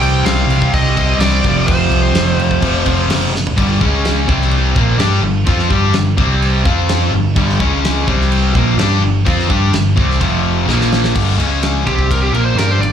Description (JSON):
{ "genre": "hard rock", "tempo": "127 BPM", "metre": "4/4", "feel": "straight", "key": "G minor", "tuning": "A4 = 439 Hz", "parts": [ { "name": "biting lead guitar", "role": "melody", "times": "0.0-3.1, 11.9-12.9 s", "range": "G4 to G5", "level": "-19 LUFS", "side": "right 2 dB", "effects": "overdrive, plate reverb" }, { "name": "crunchy overdriven guitar", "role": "riff", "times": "0.0-12.9 s", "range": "F2 to G4", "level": "-20 LUFS", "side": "right 10 dB", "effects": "spring reverb" }, { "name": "distorted electric guitar", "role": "riff", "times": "0.0-12.9 s", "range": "F2 to G4", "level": "-19 LUFS", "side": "left 14 dB", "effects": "overdrive, slapback echo" }, { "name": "distorted electric guitar", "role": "riff", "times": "0.0-11.2 s", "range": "F2 to G4", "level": "-23 LUFS", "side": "left 1 dB", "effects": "distortion, slapback echo" }, { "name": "overdriven picked electric bass", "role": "bass", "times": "0.0-12.9 s", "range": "F1 to G2", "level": "-16 LUFS", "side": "equal", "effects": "none" }, { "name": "big rock drum kit", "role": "drums", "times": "0.0-12.9 s", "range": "crash cymbal, kick drum, ride cymbal, snare drum, toms", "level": "-19 LUFS", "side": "equal", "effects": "none" } ], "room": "little or no reverb", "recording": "live gig heard through the venue's PA, club reverb", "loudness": "-12 LUFS", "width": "side -8 dB against mid", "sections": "0.0-3.6 A section; 3.6-11.2 B section; 11.2-12.9 C section", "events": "drum fill 3.3, 10.7-11.2; lead electric guitar solo 11.2-12.9", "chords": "0.0 Cm; 1.4 F5; 3.6 G5; 3.8 C#5; 4.3 C5; 4.8 Gm; 6.2 C5; 6.6 F5; 7.1 G5; 7.6 C#5; 8.1 C5; 8.5 Gm; 10.2 F5; 10.7 Bb5; 11.2 G5; 11.4 C#5; 11.9 C5; 12.3 Gm" }